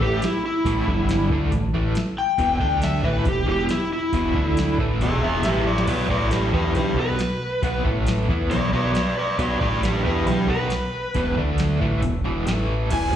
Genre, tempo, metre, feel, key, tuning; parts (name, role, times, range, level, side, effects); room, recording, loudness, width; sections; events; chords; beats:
blues rock power trio and southern rock; 137 BPM; 4/4; straight; A4 = 440 Hz
overdriven slide guitar; melody; 0.0-13.1 s; E4 to G#5; -24 LUFS; equal; plate reverb, slapback echo
overdriven semi-hollow guitar; riff; 0.0-13.2 s; E2 to E4; -25 LUFS; equal; tremolo, slapback echo
growling fingered electric bass; bass; 0.0-13.2 s; E1 to E2; -24 LUFS; equal; overdrive
soft vintage rhythm box; drums; 0.2-13.2 s; crash cymbal, hi-hat, kick drum, snare drum, toms; -27 LUFS; equal; overdrive, slapback echo
moderate club reverb, RT60 0.6 s; live gig heard through the venue's PA, recital hall reverb; -19 LUFS; side -10 dB against mid
0.0-12.9 A section
drum fill 5.7
0.0 A5; 0.9 G5; 1.3 A5; 2.4 E5; 2.6 D5; 3.0 E5; 4.3 D5; 4.8 E; 5.4 A5; 5.9 B5; 6.1 A5; 6.5 B5; 7.9 A5; 8.3 B5; 9.6 A5; 10.1 B5; 11.2 E5; 11.4 D5; 11.8 E5; 12.5 A5; 12.9 E
0.21 | 0.65 1.08 1.52 1.95 | 2.38 2.82 3.26 3.69 | 4.13 4.56 5.00 5.44 | 5.88 6.32 6.75 7.19 | 7.63 8.07 8.51 8.95 | 9.39 9.84 10.28 10.72 | 11.16 11.60 12.04 12.48 | 12.92